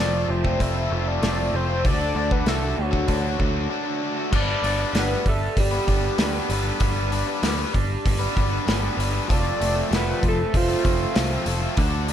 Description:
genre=indie rock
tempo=97 BPM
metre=4/4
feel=straight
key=G major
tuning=A4 = 440 Hz
part: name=lead with added fifth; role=melody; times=0.0-11.8 s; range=F4 to E5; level=-27 LUFS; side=equal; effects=chorus, analog delay
part: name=overdriven electric guitar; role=riff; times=0.0-12.1 s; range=D3 to B4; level=-28 LUFS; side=left 7 dB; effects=none
part: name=raw garage guitar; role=riff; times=0.0-12.1 s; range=D3 to A4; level=-29 LUFS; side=right 5 dB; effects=overdrive, wide subtle chorus, analog delay
part: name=picked electric bass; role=bass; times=0.0-12.1 s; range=F1 to D2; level=-26 LUFS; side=equal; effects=none
part: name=loose indie drum kit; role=drums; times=0.4-12.1 s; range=crash cymbal, hi-hat, kick drum, snare drum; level=-25 LUFS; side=equal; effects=none
room=light reverb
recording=echo-heavy mix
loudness=-20 LUFS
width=side -10 dB against mid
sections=0.0-4.3 A section; 4.3-12.1 B section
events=break 3.7-4.3; analog synth lead solo 4.3-12.1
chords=0.0 F; 1.8 D; 4.3 Gadd9; 9.3 F

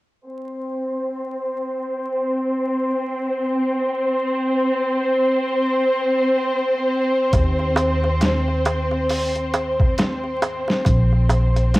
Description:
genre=trip hop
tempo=68 BPM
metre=4/4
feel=swing 59% on 16ths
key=unclear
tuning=A4 = 441 Hz
part: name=rich symphonic violin section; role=sustained chords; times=0.3-11.8 s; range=C4 to C5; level=-20 LUFS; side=equal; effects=vintage 12-bit sampler grit, low-pass filter, cassette tape
part: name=upright bass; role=bass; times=7.3-11.8 s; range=Bb1 to Eb2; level=-20 LUFS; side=equal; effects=none
part: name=boom bap sampler-style drum kit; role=drums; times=7.3-11.8 s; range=hi-hat, kick drum, snare drum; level=-20 LUFS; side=equal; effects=small room ambience, cassette tape
part: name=darbuka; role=percussion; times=7.3-11.8 s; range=none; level=-26 LUFS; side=right 2 dB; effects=none
room=light reverb, studio reverb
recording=home recording on cassette, vinyl crackle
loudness=-18 LUFS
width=side -19 dB against mid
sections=0.3-11.8 A section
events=filter sweep on violin section 0.3-11.8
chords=0.3 N.C.; 7.3 Cm/Eb; 10.9 Bbsus2

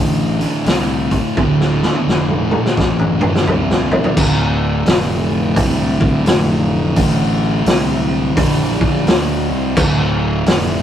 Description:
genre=stoner and doom metal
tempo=86 BPM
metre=4/4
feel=swing 63% on 8ths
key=D minor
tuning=A4 = 440 Hz
part: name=fuzz guitar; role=riff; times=0.0-10.8 s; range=D2 to D3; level=-18 LUFS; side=equal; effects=distortion
part: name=fuzz fingered electric bass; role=bass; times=0.0-10.8 s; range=D1 to D2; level=-20 LUFS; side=equal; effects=overdrive
part: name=raw garage drum kit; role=drums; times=0.4-10.7 s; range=crash cymbal, hi-hat, kick drum, snare drum, toms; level=-16 LUFS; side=equal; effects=none
room=light reverb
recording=rough rehearsal-room recording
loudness=-13 LUFS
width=side -10 dB against mid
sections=0.0-4.2 A section; 4.2-10.8 B section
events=drum fill 1.4-4.2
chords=0.0 D5; 4.2 Dm

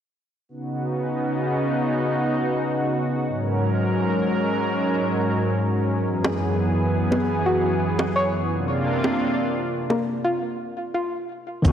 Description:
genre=sunset chillout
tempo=86 BPM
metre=4/4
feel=straight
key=unclear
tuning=A4 = 440 Hz
part: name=lush unison pad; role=sustained chords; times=0.5-11.7 s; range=F#2 to A#4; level=-22 LUFS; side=equal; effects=chorus
part: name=bongos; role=percussion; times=6.2-10.0 s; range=none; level=-28 LUFS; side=right 1 dB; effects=none
part: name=soft round pluck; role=arpeggios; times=7.1-11.3 s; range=Bb3 to C#5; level=-25 LUFS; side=left 1 dB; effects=chorus, digital delay
part: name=tine electric piano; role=accompaniment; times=11.6-11.7 s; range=D#3 to F#4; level=-19 LUFS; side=left 1 dB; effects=overdrive, fast stereo tremolo, auto-pan
part: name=woody fretless electric bass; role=bass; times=11.6-11.7 s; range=C#2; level=-18 LUFS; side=equal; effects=transformer saturation
part: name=electronic kick drum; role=drums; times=11.6-11.7 s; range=none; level=-19 LUFS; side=equal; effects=studio reverb
part: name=cabasa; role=drums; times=11.7 s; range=none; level=-39 LUFS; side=right 4 dB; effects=studio reverb
room=wet lush hall reverb, RT60 2.0 s, digital ambience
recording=worn, warbling old tape, cassette tape, warbly pitch drift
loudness=-21 LUFS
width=side -9 dB against mid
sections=0.5-11.6 A section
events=break 10.3-11.6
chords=0.5 C#9sus4; 3.3 G#9sus4; 6.1 F#9sus4; 8.5 C9sus4

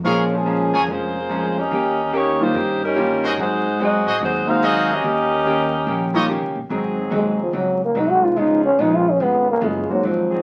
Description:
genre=jazz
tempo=144 BPM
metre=4/4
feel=swing 67% on 8ths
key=unclear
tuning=A4 = 440 Hz
part: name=archtop guitar, miked and amplified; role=accompaniment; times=0.0-10.3 s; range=Ab2 to G4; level=-27 LUFS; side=equal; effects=none
part: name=warm baby grand piano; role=accompaniment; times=0.0-10.0 s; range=G3 to C5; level=-26 LUFS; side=equal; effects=none
part: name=brilliant trumpet section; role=stabs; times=0.0-6.2 s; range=Gb4 to Ab5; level=-24 LUFS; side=equal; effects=none
part: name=upright bass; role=bass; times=0.0-10.4 s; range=F1 to A2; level=-30 LUFS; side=equal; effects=none
part: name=mellow saxophone section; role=melody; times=0.1-6.3 s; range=F3 to F5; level=-22 LUFS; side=equal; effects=none
part: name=bright trombone section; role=sustained chords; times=6.7-10.4 s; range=F3 to Ab4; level=-31 LUFS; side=equal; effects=none
part: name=growling trombone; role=melody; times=7.2-10.4 s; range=F3 to Gb4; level=-20 LUFS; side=equal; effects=none
room=wet studio reverb, RT60 0.5 s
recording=very old 78 rpm record, vinyl crackle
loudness=-19 LUFS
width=mono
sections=0.0-6.7 A section; 6.7-10.4 B section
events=trombone solo 6.7-10.4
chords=0.1 Bbm7; 1.7 Eb7; 3.4 Ab7; 5.0 Eb7; 6.7 Ab7; 8.4 Db7

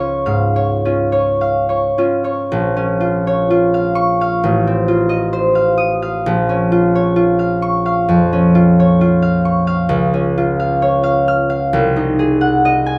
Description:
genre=classical, solo harp piece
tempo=52-68 BPM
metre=4/4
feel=rubato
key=Bb minor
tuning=A4 = 438 Hz
part: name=concert harp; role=solo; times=0.0-13.0 s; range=A1 to F6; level=-15 LUFS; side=equal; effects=none
room=light reverb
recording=close, detailed microphones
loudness=-15 LUFS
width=mono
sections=0.0-2.5 A section; 2.5-13.0 B section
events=none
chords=0.0 Db; 2.5 Bbm; 4.4 F7/A; 6.3 Bbm; 9.9 Db; 11.8 Ab7/C

